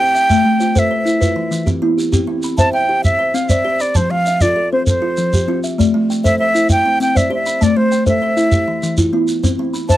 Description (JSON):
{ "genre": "southern african traditional, mbira-style interlocking cycle", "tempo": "131 BPM (dotted quarters)", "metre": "12/8", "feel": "straight", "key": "C major", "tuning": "A4 = 439 Hz", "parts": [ { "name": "breathy concert flute", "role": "melody", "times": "0.0-10.0 s", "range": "C5 to A5", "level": "-16 LUFS", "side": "right 1 dB", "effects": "none" }, { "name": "kalimba", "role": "arpeggios", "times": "0.0-10.0 s", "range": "E3 to B5", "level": "-18 LUFS", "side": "left 3 dB", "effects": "none" }, { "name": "kalimba", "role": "arpeggios", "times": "0.0-10.0 s", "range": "E3 to A5", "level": "-22 LUFS", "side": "right 6 dB", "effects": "tape echo" }, { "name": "shekere", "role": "percussion", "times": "0.1-10.0 s", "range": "none", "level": "-17 LUFS", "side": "right 1 dB", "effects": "none" } ], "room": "light reverb", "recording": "dry, close 1970s-style studio recording", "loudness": "-13 LUFS", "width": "side -14 dB against mid", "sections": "0.0-2.1 A section; 2.1-10.0 B section", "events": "none", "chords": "0.3 Am; 1.2 Em; 2.1 C; 4.0 F; 5.8 Am; 6.7 C; 7.6 Am; 8.5 Em; 9.4 C", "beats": "| 0.30 0.75 1.21 1.67 | 2.13 2.58 3.04 3.50 | 3.96 4.41 4.87 5.33 | 5.79 6.24 6.70 7.16 | 7.62 8.07 8.53 8.99 | 9.44 9.90" }